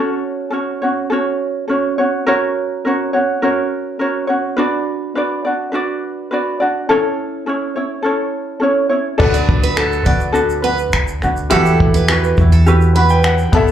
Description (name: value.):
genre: acoustic pop.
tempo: 104 BPM.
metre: 4/4.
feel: straight.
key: unclear.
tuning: A4 = 440 Hz.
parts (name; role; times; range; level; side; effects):
ukulele; accompaniment; 0.0-13.7 s; C#4 to E5; -16 LUFS; equal; slapback echo.
clear baby grand piano; accompaniment; 9.2-13.7 s; B3 to B5; -22 LUFS; left 2 dB; slapback echo.
upright bass; bass; 9.2-13.7 s; A1 to E2; -15 LUFS; equal; none.
compact cocktail drum kit; drums; 9.2-13.7 s; crash cymbal, finger snaps, kick drum, shaker; -17 LUFS; equal; none.
picked steel-string acoustic guitar; arpeggios; 9.3-13.7 s; A4 to D5; -20 LUFS; right 6 dB; slapback echo.
room: light reverb, small room ambience.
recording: live gig heard through the venue's PA, club reverb.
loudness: -14 LUFS.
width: side -10 dB against mid.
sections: 0.0-9.2 A section; 9.2-13.7 B section.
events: grand piano fill 12.7-13.7.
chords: 0.0 F#m; 2.3 F#; 4.6 Bm; 6.9 A; 9.2 D6; 11.5 Emadd9.